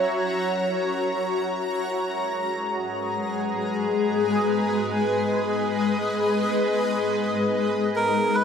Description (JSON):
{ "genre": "ambient", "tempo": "free time", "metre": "none", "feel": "none", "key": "G# minor", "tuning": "A4 = 441 Hz", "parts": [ { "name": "granular cloud pad", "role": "sustained chords", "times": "0.0-8.4 s", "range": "G#3 to A#5", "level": "-22 LUFS", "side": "left 1 dB", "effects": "built-in reverb, lush chorus" }, { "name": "melodica", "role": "melody", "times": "8.0-8.4 s", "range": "A#4 to B4", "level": "-21 LUFS", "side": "right 2 dB", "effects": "none" } ], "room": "wet plate reverb, RT60 2.7 s", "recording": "dreamy mix soaked in reverb", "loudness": "-22 LUFS", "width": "side -7 dB against mid", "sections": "0.0-8.4 A section", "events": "none", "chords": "0.0 F#7; 1.7 G#m" }